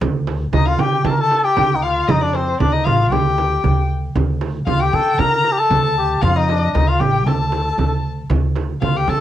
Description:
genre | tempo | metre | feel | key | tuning
Arabic maqam ensemble | 116 BPM | 4/4 | straight | D maqam kurd | A4 = 440 Hz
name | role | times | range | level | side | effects
upright bass | bass | 0.0-9.2 s | A1 to D3 | -20 LUFS | left 1 dB | none
darbuka | percussion | 0.0-9.2 s | none | -24 LUFS | right 5 dB | none
frame drum | percussion | 0.0-9.2 s | none | -24 LUFS | right 6 dB | none
warm violin | second line | 0.5-9.2 s | C5 to Bb5 | -22 LUFS | left 6 dB | plate reverb
trumpet with cup mute | melody | 0.6-9.2 s | C4 to Bb4 | -19 LUFS | left 1 dB | plate reverb
room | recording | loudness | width
moderate small room reverb, RT60 0.5 s | home recording on cassette | -15 LUFS | side -12 dB against mid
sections
0.0-9.2 A section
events
none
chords
none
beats
| 0.01 0.53 1.05 1.57 | 2.08 2.60 3.12 3.64 | 4.16 4.67 5.19 5.71 | 6.23 6.75 7.26 7.78 | 8.30 8.82

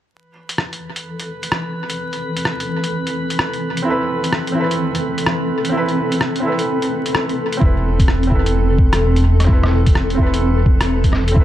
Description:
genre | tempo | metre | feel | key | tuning
future garage | 128 BPM | 4/4 | swing 62% on 16ths | unclear | A4 = 440 Hz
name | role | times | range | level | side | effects
granular cloud pad | sustained chords | 0.8-11.4 s | E3 to A4 | -22 LUFS | equal | built-in reverb, sidechain pumping
drifting glass-harmonics texture | texture | 0.7-7.6 s | B4 | -30 LUFS | equal | chorus, built-in reverb
lo-fi sampler-style drum kit | drums | 0.5-11.3 s | hi-hat, rim click | -23 LUFS | equal | small room reverb, tape echo
felt-muted upright piano | accompaniment | 3.8-11.4 s | C4 to B4 | -22 LUFS | right 1 dB | sidechain pumping, dub echo
dark detuned saw bass | bass | 7.6-11.4 s | E1 | -16 LUFS | equal | sidechain pumping
electronic kick drum | drums | 7.6-11.4 s | none | -14 LUFS | equal | small room reverb
room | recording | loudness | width
light reverb, digital ambience | echo-heavy mix, vinyl crackle | -15 LUFS | side -12 dB against mid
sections
0.1-7.6 A section; 7.6-11.4 B section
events
filter sweep on ambient pad 0.1-7.6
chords
0.1 Amadd9/E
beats
| 0.11 0.58 1.05 1.52 | 1.99 2.46 2.93 3.40 | 3.86 4.33 4.80 5.27 | 5.74 6.21 6.68 7.14 | 7.61 8.08 8.55 9.02 | 9.49 9.96 10.43 10.89 | 11.36

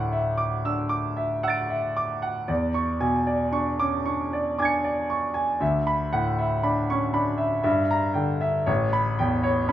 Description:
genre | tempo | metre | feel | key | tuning
classical, impressionist solo piano | 58 BPM | 3/4 | rubato | D major | A4 = 440 Hz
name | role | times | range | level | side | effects
clear concert grand piano | solo | 0.0-9.7 s | A1 to D7 | -22 LUFS | equal | none
room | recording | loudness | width
moderate recital hall reverb, RT60 1.5 s | minimal, uncompressed stereo recording | -22 LUFS | side -12 dB against mid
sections
0.0-9.7 A section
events
none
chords
0.0 Dadd9; 2.5 E6; 5.6 D69; 7.7 Gm6; 8.7 A9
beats
0.39 1.45 | 2.50 3.54 4.59 | 5.61 6.64 7.66 | 8.69 9.69

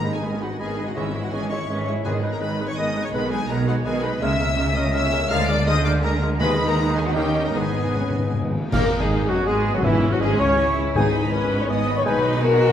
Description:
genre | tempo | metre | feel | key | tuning
classical, dramatic, fast romantic movement for symphony orchestra | 164 BPM | 3/4 | rubato | G# minor | A4 = 440 Hz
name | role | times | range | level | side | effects
warm symphonic violin section | melody | 0.0-12.7 s | E4 to E#6 | -31 LUFS | left 3 dB | none
large flute ensemble | second line | 0.0-12.7 s | A#4 to D#6 | -32 LUFS | left 2 dB | none
mellow clarinet | second line | 0.0-12.2 s | D#4 to E#5 | -32 LUFS | equal | none
warm oboe | second line | 0.0-12.2 s | E4 to B5 | -33 LUFS | right 1 dB | none
dark bassoon | accompaniment | 0.0-12.2 s | E3 to C#4 | -32 LUFS | right 1 dB | none
rich chamber viola section | accompaniment | 0.0-12.7 s | D#3 to F#4 | -29 LUFS | right 2 dB | none
concert harp | arpeggios | 0.0-12.7 s | G#2 to B5 | -30 LUFS | left 7 dB | none
clear symphonic double bass section | bass | 0.0-12.7 s | E1 to D#2 | -27 LUFS | right 3 dB | none
warm symphonic cello section | bass | 0.0-12.7 s | E2 to D#3 | -28 LUFS | right 2 dB | none
timpani | percussion | 0.0-2.6, 6.4-11.5 s | G#2 to D#3 | -28 LUFS | left 1 dB | none
rich symphonic violin section | second line | 0.1-12.7 s | E4 to B5 | -32 LUFS | left 2 dB | none
clear trombone section | sustained chords | 1.0-12.7 s | C#3 to C#4 | -32 LUFS | right 4 dB | none
mellow French horn section | sustained chords | 1.0-12.7 s | A#3 to D#5 | -25 LUFS | left 3 dB | none
cymbal swell, clash cymbals and concert bass drum | percussion | 6.4-9.4 s | none | -35 LUFS | equal | none
room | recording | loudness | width
wet recital hall reverb, RT60 1.7 s | none | -19 LUFS | side -9 dB against mid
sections
0.0-8.7 A section; 8.7-12.7 B section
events
timpani fill 7.5-8.7; band accent 8.7-9.1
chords
0.0 G#m; 1.0 C#m/G#; 2.1 G#m; 3.1 G#m/B; 4.2 A#m7b5/C#; 5.3 A#7/D; 6.4 G#m/D#; 7.2 D#7; 7.5 G#m; 9.8 C#m/E; 11.0 G#m; 12.1 G#m/B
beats
0.23 0.59 | 0.96 1.33 1.69 | 2.05 2.41 2.78 | 3.14 3.50 3.86 | 4.22 4.58 4.95 | 5.31 5.67 6.04 | 6.41 6.78 7.16 | 7.55 7.95 8.34 | 8.73 9.10 9.47 | 9.85 10.22 10.59 | 10.96 11.33 11.69 | 12.06 12.42

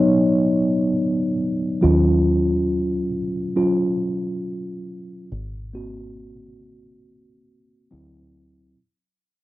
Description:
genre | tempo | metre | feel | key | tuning
R&B, neo-soul | 69 BPM | 4/4 | swing 55% on 16ths | Eb minor | A4 = 441 Hz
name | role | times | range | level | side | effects
mellow tine electric piano | accompaniment | 0.0-8.8 s | Gb3 to Db5 | -19 LUFS | equal | medium stereo tremolo
deep dub fingered electric bass | bass | 1.8-8.7 s | Ab1 to Eb2 | -23 LUFS | equal | none
room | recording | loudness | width
little or no reverb | home recording on cassette, nothing above 10.7 kHz | -18 LUFS | side -16 dB against mid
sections
0.0-8.8 A section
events
fade-out 0.0-8.8; tine electric piano solo 0.0-8.8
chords
0.0 Db9sus4; 1.8 Ebm9; 5.3 Ab9; 7.9 D9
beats
0.07 0.94 | 1.81 2.68 3.55 4.42 | 5.29 6.16 7.03 7.90

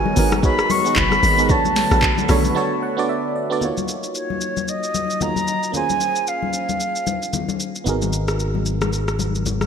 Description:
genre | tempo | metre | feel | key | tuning
amapiano | 113 BPM | 4/4 | swing 58% on 16ths | Eb minor | A4 = 440 Hz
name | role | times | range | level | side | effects
silver concert flute | melody | 0.0-7.6 s | Db5 to Db6 | -22 LUFS | right 1 dB | ping-pong delay
FM electric piano | accompaniment | 0.0-9.7 s | Bb3 to B5 | -24 LUFS | right 4 dB | chorus
warm analog pad | sustained chords | 0.0-3.6 s | D3 to Gb4 | -27 LUFS | right 2 dB | chorus, sidechain pumping
hollow log drum bass | bass | 0.0-2.5 s | Gb1 to B1 | -21 LUFS | equal | none
congas | percussion | 0.1-9.7 s | none | -26 LUFS | left 8 dB | none
smooth R&B drum kit | drums | 0.2-9.7 s | handclaps, hi-hat, kick drum, rim click, shaker, snare drum | -23 LUFS | equal | overdrive, gated reverb
fingered electric bass | bass | 7.9-9.7 s | Ab1 | -22 LUFS | equal | none
room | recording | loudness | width
light reverb | bright 1980s-style digital production | -18 LUFS | side -7 dB against mid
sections
0.0-3.6 A section; 3.6-9.7 B section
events
drop 0.0-3.6; FM electric piano fill 2.0-3.6; break 2.6-3.6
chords
0.0 Abm7; 1.5 Bm7; 3.6 Ebm7; 5.7 Bbm7; 7.9 Abm7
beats
0.43 0.96 | 1.49 2.02 2.56 3.09 | 3.62 4.15 4.68 5.21 | 5.74 6.27 6.80 7.33 | 7.87 8.40 8.93 9.46

